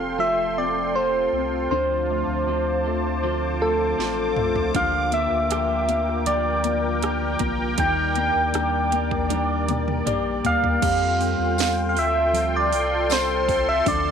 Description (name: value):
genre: pop ballad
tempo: 79 BPM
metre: 4/4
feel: straight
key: F major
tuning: A4 = 445 Hz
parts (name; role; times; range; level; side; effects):
- soft struck synth lead; melody; 0.0-14.1 s; A4 to G5; -23 LUFS; equal; chorus, slapback echo
- warm grand piano; accompaniment; 0.0-14.1 s; D3 to D5; -29 LUFS; left 16 dB; none
- sweeping resonant pad; sustained chords; 0.0-14.1 s; F4 to D6; -28 LUFS; equal; chorus
- twelve-string electric guitar; arpeggios; 0.0-14.1 s; D3 to A4; -32 LUFS; right 14 dB; spring reverb
- round analog bass; bass; 0.0-14.1 s; F1 to F2; -29 LUFS; equal; none
- house drum kit; drums; 4.0-14.0 s; crash cymbal, hi-hat, kick drum, rim click, snare drum, toms; -28 LUFS; right 4 dB; none
- tambourine; percussion; 11.6-13.3 s; none; -34 LUFS; left 17 dB; none
room: light reverb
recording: 1960s-style stereo with parts hard left and right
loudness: -20 LUFS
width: side -7 dB against mid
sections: 0.0-10.8 A section; 10.8-14.1 B section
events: drum fill 4.0-4.7, 9.3-10.8; grand piano fill 9.7-10.8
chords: 0.0 Fadd9; 1.7 Dm7; 4.7 Gm7/D; 7.8 Ebmaj7; 10.8 Fadd9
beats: 0.19 0.95 | 1.71 2.46 3.22 3.98 | 4.74 5.50 6.26 7.02 | 7.78 8.54 9.30 10.06 | 10.82 11.58 12.34 13.10 | 13.86